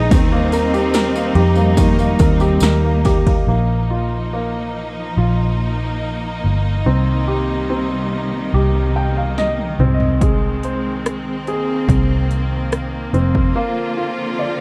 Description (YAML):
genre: pop ballad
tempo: 72 BPM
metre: 4/4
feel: straight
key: unclear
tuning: A4 = 439 Hz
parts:
  - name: rich symphonic cello section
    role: second line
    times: 0.0-3.5 s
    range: Bb3 to Eb4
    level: -26 LUFS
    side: equal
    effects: none
  - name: clear baby grand piano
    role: accompaniment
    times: 0.0-14.6 s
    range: Eb3 to G5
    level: -24 LUFS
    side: equal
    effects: none
  - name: bright studio string section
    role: sustained chords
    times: 0.0-14.6 s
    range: C3 to F4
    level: -26 LUFS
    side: equal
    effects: none
  - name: vintage muted fingered electric bass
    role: bass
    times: 0.0-13.5 s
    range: F1 to F2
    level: -20 LUFS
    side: equal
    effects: none
  - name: 80s electronic pad drums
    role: drums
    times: 0.1-3.5, 9.4-13.5 s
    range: hi-hat, kick drum, ride cymbal, rim click, snare drum, toms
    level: -20 LUFS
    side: equal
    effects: gated reverb on snare and toms, overdrive
  - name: tambourine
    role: percussion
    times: 0.1-3.2 s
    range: none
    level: -36 LUFS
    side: equal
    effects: none
room: little or no reverb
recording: dry, close 1970s-style studio recording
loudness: -18 LUFS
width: mono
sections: 0.0-3.5 A section; 3.5-14.6 B section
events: grand piano fill 8.5-10.2; drum fill 9.4-10.2; break 13.6-14.6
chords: 0.1 Eb; 3.5 Bbsus4; 6.9 Cm7; 9.8 Ab/C; 13.6 Bbadd9